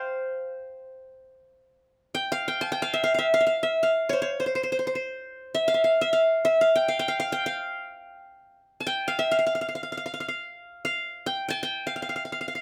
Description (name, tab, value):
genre	Turkish makam ensemble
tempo	free time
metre	none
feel	none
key	unclear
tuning	A4 = 440 Hz
part	qanun	solo	0.0-12.6 s	C5 to A5-40c	-26 LUFS	equal	none
room	light reverb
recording	none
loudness	-26 LUFS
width	mono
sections	0.0-1.9 A section; 1.9-12.6 A section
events	none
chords	none